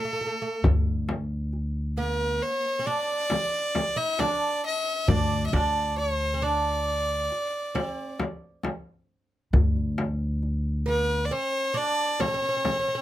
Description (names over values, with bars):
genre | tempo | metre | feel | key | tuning
Arabic maqam ensemble | 135 BPM (eighths) | 10/8 | straight | D maqam huzam | A4 = 440 Hz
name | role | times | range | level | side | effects
clear violin | melody | 0.0-13.0 s | A4+35c to E5-47c | -27 LUFS | equal | none
oud | second line | 0.0-13.0 s | A3+40c to E4-50c | -31 LUFS | right 3 dB | none
darbuka | percussion | 0.2-12.9 s | none | -30 LUFS | left 2 dB | none
upright bass | bass | 0.6-11.3 s | D2 | -26 LUFS | equal | none
frame drum | percussion | 0.6-12.9 s | none | -29 LUFS | left 2 dB | none
room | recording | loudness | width
light reverb | close, detailed microphones | -24 LUFS | side -13 dB against mid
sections
0.0-13.0 A section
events
none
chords
none